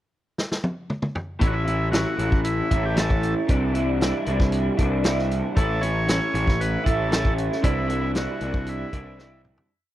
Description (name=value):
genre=psychedelic rock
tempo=116 BPM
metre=4/4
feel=straight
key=unclear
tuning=A4 = 441 Hz
part: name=vintage drum kit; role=drums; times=0.4-9.7 s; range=hi-hat, kick drum, snare drum, toms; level=-24 LUFS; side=equal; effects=none
part: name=combo organ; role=melody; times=1.4-9.4 s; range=E4 to C#5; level=-29 LUFS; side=equal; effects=spring reverb, tape echo
part: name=electric guitar through a small old amp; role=riff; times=1.4-9.7 s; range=A2 to E4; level=-26 LUFS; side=right 1 dB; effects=flanger
part: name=fuzz picked electric bass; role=bass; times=1.4-9.6 s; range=A1 to C2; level=-25 LUFS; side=equal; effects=overdrive
room=small room ambience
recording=dry, close 1970s-style studio recording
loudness=-21 LUFS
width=side -13 dB against mid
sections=0.0-1.4 pickup bar; 1.4-9.7 verse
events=drum fill 0.4-1.4, 9.2-9.7; fade-out 7.6-9.7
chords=0.0 N.C.; 1.4 A; 3.5 Cadd9; 5.6 A; 7.6 Cadd9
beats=0.37 0.89 | 1.41 1.93 2.45 2.97 | 3.49 4.00 4.52 5.04 | 5.56 6.08 6.59 7.11 | 7.63 8.15 8.67 9.19